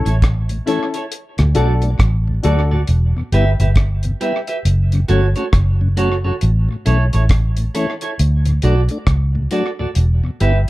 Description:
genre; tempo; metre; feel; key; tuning
roots reggae; 68 BPM; 4/4; swing 62% on 16ths; E dorian; A4 = 439 Hz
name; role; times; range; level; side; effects
dark upright piano; stabs; 0.0-2.7 s; C#4 to A4; -21 LUFS; left 4 dB; plate reverb
vintage muted fingered electric bass; bass; 0.0-10.6 s; E1 to D2; -14 LUFS; equal; none
clean electric guitar; accompaniment; 0.1-10.6 s; E4 to E5; -23 LUFS; right 3 dB; tape echo, plate reverb
mellow tonewheel organ; accompaniment; 0.1-10.5 s; D2 to E4; -24 LUFS; left 2 dB; slow rotary speaker
deep reggae drum kit; drums; 0.1-10.7 s; hi-hat, kick drum, rim click; -18 LUFS; equal; tape echo
room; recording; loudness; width
light reverb; dark, warm production; -14 LUFS; side -18 dB against mid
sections
0.0-2.9 A section; 2.9-10.7 A section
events
none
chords
0.0 A; 1.1 D; 2.9 Em; 4.6 F#m; 6.4 A; 8.2 D; 10.0 Em

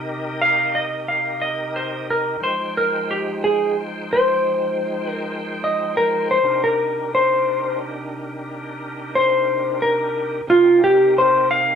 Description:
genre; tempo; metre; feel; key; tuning
blues; 60 BPM (dotted quarters); 12/8; straight; C minor; A4 = 440 Hz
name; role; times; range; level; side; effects
bright tonewheel organ; sustained chords; 0.0-11.8 s; C3 to G5; -28 LUFS; equal; slow rotary speaker, chorus vibrato
clean lap steel guitar; melody; 0.4-11.8 s; F4 to F5; -17 LUFS; equal; none
room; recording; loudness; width
moderate studio reverb, RT60 0.7 s; band playing live in one room; -17 LUFS; side -8 dB against mid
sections
0.0-11.8 A section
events
electric slide guitar solo 0.0-11.8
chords
0.0 Cm7; 2.4 Fm9; 6.4 Cm9

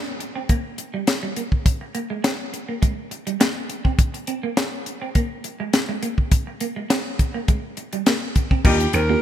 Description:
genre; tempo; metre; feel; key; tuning
early-eighties boogie funk; 103 BPM; 4/4; straight; unclear; A4 = 440 Hz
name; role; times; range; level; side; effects
semi-hollow electric guitar; riff; 0.2-9.2 s; G3 to Db4; -29 LUFS; right 4 dB; wide subtle chorus
tight funk drum kit; drums; 0.2-9.1 s; crash cymbal, hi-hat, kick drum, snare drum; -20 LUFS; equal; none
clear horn section; second line; 8.6-8.8 s; G3 to Bb4; -28 LUFS; left 5 dB; none
mellow FM electric piano; accompaniment; 8.6-9.2 s; Bb3 to G4; -24 LUFS; right 2 dB; chorus, phaser
vintage slap bass; bass; 8.6-9.1 s; Eb2; -20 LUFS; equal; none
breathy alto saxophone; melody; 8.7-9.2 s; G4 to Bb4; -22 LUFS; equal; none
room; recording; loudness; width
light reverb, small room ambience; bright 1980s-style digital production; -20 LUFS; side -11 dB against mid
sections
0.0-8.6 A section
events
none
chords
0.0 Gmadd11; 1.7 Abmaj7; 4.0 Db5; 6.3 Gmadd11; 8.6 Ebmaj7

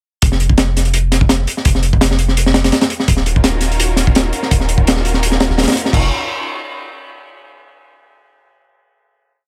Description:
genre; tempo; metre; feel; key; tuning
drum and bass, jungle; 168 BPM; 4/4; straight; unclear; A4 = 439 Hz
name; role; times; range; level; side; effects
long sustained 808-style bass; bass; 0.2-6.1 s; Eb1 to F1; -19 LUFS; equal; none
crunchy breakbeat drum kit; drums; 0.2-6.0 s; crash cymbal, hi-hat, kick drum, snare drum; -16 LUFS; equal; none
soft string machine; sustained chords; 3.1-6.1 s; Db4 to C5; -26 LUFS; equal; ensemble chorus
room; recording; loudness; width
studio reverb; none; -14 LUFS; mono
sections
0.2-5.9 drop; 5.9-7.4 final chord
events
drop 0.2-5.9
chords
0.2 N.C.; 3.1 Ebm9; 5.9 Fm9

